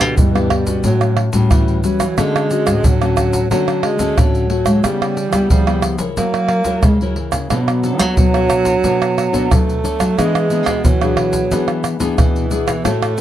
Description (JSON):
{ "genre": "samba and choro", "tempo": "90 BPM", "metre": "4/4", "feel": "straight", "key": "unclear", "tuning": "A4 = 440 Hz", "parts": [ { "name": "breathy tenor saxophone", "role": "second line", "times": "0.0-13.2 s", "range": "D3 to A#3", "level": "-19 LUFS", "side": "right 4 dB", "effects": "none" }, { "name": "nylon-string guitar", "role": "accompaniment", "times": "0.0-13.2 s", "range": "A2 to C#5", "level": "-20 LUFS", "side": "left 6 dB", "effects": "none" }, { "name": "nylon-string guitar", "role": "bass", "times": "0.0-13.2 s", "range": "G2 to G#3", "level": "-20 LUFS", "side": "equal", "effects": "none" }, { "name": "tube shaker, surdo, pandeiro and tamborim", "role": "percussion", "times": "0.0-13.2 s", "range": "none", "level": "-17 LUFS", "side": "right 1 dB", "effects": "none" } ], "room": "moderate studio reverb, RT60 0.5 s", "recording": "dark, warm production", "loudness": "-13 LUFS", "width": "side -12 dB against mid", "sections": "0.0-13.2 A section", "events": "none", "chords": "0.0 Em7; 0.8 A6; 2.2 Dmaj7; 4.8 C#m7b5; 6.2 F#7; 7.5 Bm9; 10.2 E7" }